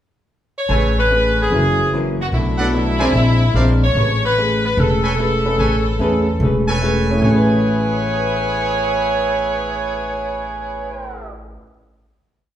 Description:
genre	jazz, big band swing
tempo	147 BPM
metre	4/4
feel	swing 64% on 8ths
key	A major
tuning	A4 = 441 Hz
part	edgy saxophone section	melody	0.6-11.3 s	B3 to C#5	-20 LUFS	left 1 dB	none
part	archtop guitar, miked and amplified	accompaniment	0.7-11.7 s	F#2 to B4	-22 LUFS	left 1 dB	none
part	clear trumpet section	stabs	0.7-11.3 s	A4 to G#5	-23 LUFS	right 2 dB	none
part	upright bass	bass	0.7-11.6 s	E1 to E2	-20 LUFS	equal	none
part	warm grand piano	accompaniment	1.5-11.8 s	A2 to C#5	-22 LUFS	equal	none
room	wet large studio reverb, RT60 1.3 s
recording	heard from further back in the room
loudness	-15 LUFS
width	side -11 dB against mid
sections	0.0-0.7 pickup bar; 0.7-7.2 A section; 7.2-10.5 final chord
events	none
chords	0.0 N.C.; 0.7 Amaj9; 1.5 F#7; 2.3 Bm7; 3.1 Bb9; 4.0 Amaj9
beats	0.28 | 0.69 1.10 1.51 1.92 | 2.32 2.73 3.14 3.55 | 3.96 4.37 4.78 5.18 | 5.59 6.00 6.41 6.82 | 7.23 7.64 8.05 8.46 | 8.87 9.28 9.69 10.10

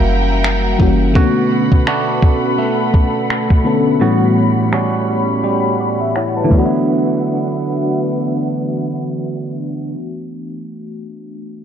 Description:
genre	contemporary R&B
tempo	84 BPM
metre	4/4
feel	swing 58% on 16ths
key	D major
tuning	A4 = 442 Hz
part	FM electric piano with soft pad layer	accompaniment	0.0-11.6 s	A2 to A5	-18 LUFS	left 2 dB	chorus, tremolo
part	warm studio string section	sustained chords	0.0-9.9 s	G3 to B5	-22 LUFS	left 2 dB	none
part	direct-recorded clean electric guitar	arpeggios	0.0-10.2 s	A2 to G4	-20 LUFS	right 6 dB	digital delay
part	clean 808-style bass	bass	0.0-1.1 s	F#1	-17 LUFS	equal	none
part	gated 80s digital drum machine	drums	0.4-6.7 s	crash cymbal, finger snaps, kick drum	-14 LUFS	equal	none
room	light reverb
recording	dark, warm production, low-pass filter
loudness	-13 LUFS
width	side -9 dB against mid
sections	0.0-6.9 A section; 6.9-9.7 B section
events	filter sweep 0.0-6.9; FM electric piano fill 5.4-6.9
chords	0.0 F#7b9; 1.2 Bm7; 4.0 A13; 6.5 D69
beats	0.44 | 1.15 1.87 2.58 3.29 | 4.01 4.72 5.44 6.15 | 6.87 7.58 8.29 9.01

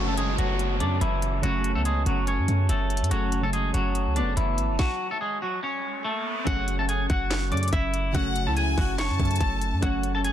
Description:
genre	hip hop, trap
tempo	143 BPM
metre	4/4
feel	half-time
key	F# minor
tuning	A4 = 440 Hz
part	twangy electric guitar	melody	0.0-10.3 s	E3 to D6	-28 LUFS	left 1 dB	ping-pong delay
part	glassy digital keys	accompaniment	0.0-10.3 s	C#3 to E4	-30 LUFS	right 1 dB	chorus
part	glass harmonica	sustained chords	0.0-4.8 s	F#4 to A5	-36 LUFS	right 5 dB	none
part	clean 808-style bass	bass	0.0-10.3 s	F#1 to F#2	-26 LUFS	equal	none
part	downlifter and riser	sound effects	0.0-6.5 s	none	-35 LUFS	equal	none
part	trap drum kit	drums	0.2-10.3 s	handclaps, hi-hat, kick drum, snare drum	-28 LUFS	equal	vintage 12-bit sampler grit
part	warm studio violin section	second line	8.1-9.8 s	F#5 to A5	-35 LUFS	left 3 dB	ping-pong delay
room	light reverb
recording	dense, heavily limited modern master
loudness	-23 LUFS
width	side -10 dB against mid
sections	0.0-6.5 A section; 6.5-10.3 B section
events	stop 4.8-6.5; riser 5.5-6.5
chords	0.0 F#m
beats	0.17 0.59 1.01 | 1.43 1.85 2.27 2.69 | 3.11 3.53 3.95 4.37 | 4.79 5.21 5.63 6.05 | 6.47 6.89 7.31 7.73 | 8.15 8.57 8.99 9.40 | 9.82 10.24

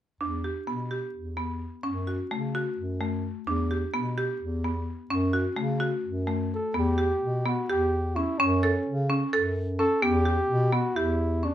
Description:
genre	contemporary instrumental, chamber music in an uneven meter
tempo	257 BPM (eighths)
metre	7/8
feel	straight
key	E dorian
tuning	A4 = 439 Hz
part	buzzing marimba with hard mallets	arpeggios	0.2-11.5 s	A3 to A4	-28 LUFS	equal	none
part	dark bass clarinet	bass	0.2-11.5 s	E2 to C#3	-29 LUFS	equal	none
part	mellow flugelhorn	melody	6.5-11.5 s	C#4 to A4	-28 LUFS	equal	none
room	light reverb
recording	close, detailed microphones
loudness	-25 LUFS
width	side -11 dB against mid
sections	0.2-6.8 A section; 6.8-11.5 B section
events	none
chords	0.2 Em; 1.9 F#m; 3.5 Em; 5.1 F#m; 6.8 Em; 8.4 F#m; 10.0 Em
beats	| 0.21 0.45 0.68 0.92 1.15 1.38 1.62 | 1.85 2.09 2.32 2.55 2.78 3.02 3.25 | 3.48 3.71 3.94 4.18 4.41 4.64 4.87 | 5.11 5.33 5.57 5.80 6.04 6.27 6.51 | 6.75 6.99 7.22 7.46 7.69 7.93 8.16 | 8.40 8.63 8.87 9.10 9.33 9.57 9.80 | 10.03 10.26 10.50 10.73 10.96 11.20 11.43

